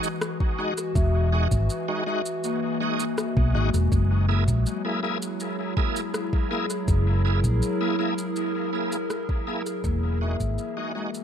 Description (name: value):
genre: ambient dub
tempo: 81 BPM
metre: 4/4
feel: straight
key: F# mixolydian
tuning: A4 = 440 Hz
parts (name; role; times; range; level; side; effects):
- warbly tape-like pad; sustained chords; 0.0-11.2 s; E3 to A#4; -30 LUFS; equal; chorus, built-in reverb
- vibraphone with soft mallets; arpeggios; 0.0-11.2 s; G#3 to E5; -33 LUFS; moving between left 9 dB and right 1 dB; auto-pan, tape echo
- bright tonewheel organ; stabs; 0.0-11.1 s; G#3 to G#4; -31 LUFS; right 1 dB; overdrive, chorus vibrato, slow rotary speaker, dub echo
- electronic shaker and rim click; drums; 0.0-11.2 s; none; -36 LUFS; equal; overdrive, dub echo
- electronic kick drum; drums; 0.4-10.5 s; none; -26 LUFS; equal; overdrive
- hollow-body short-scale fingered electric bass; bass; 1.0-10.6 s; E1 to B1; -22 LUFS; equal; none
room: light reverb, digital ambience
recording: echo-heavy mix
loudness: -22 LUFS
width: side -8 dB against mid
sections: 0.0-11.2 A section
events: fade-out 7.9-11.2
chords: 0.0 Emaj9; 3.9 F#9; 9.8 Emaj9